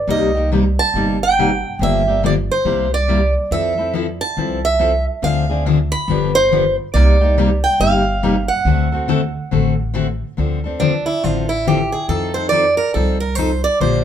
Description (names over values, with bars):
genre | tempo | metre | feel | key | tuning
acoustic string swing (jazz manouche) | 140 BPM | 4/4 | swing 62% on 8ths | D minor from 10.4 s | A4 = 440 Hz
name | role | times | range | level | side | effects
picked swing-style acoustic guitar | melody | 0.1-14.0 s | D4 to B5 | -18 LUFS | right 2 dB | none
picked steel-string acoustic guitar | accompaniment | 0.1-14.0 s | C3 to A4 | -19 LUFS | left 4 dB | none
upright bass | bass | 0.1-14.0 s | G1 to F2 | -20 LUFS | right 1 dB | none
room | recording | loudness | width
moderate club reverb, RT60 0.8 s | minimal, uncompressed stereo recording | -14 LUFS | side -9 dB against mid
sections
0.0-10.4 A section; 10.4-14.0 B section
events
steel-string acoustic guitar solo 10.4-14.0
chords
0.1 Cm7; 1.8 Gm7; 2.7 C7; 3.5 Fmaj7; 5.2 Dm7b5; 6.1 G7; 6.9 Cm9; 8.7 D7; 10.4 Dm7; 12.1 F7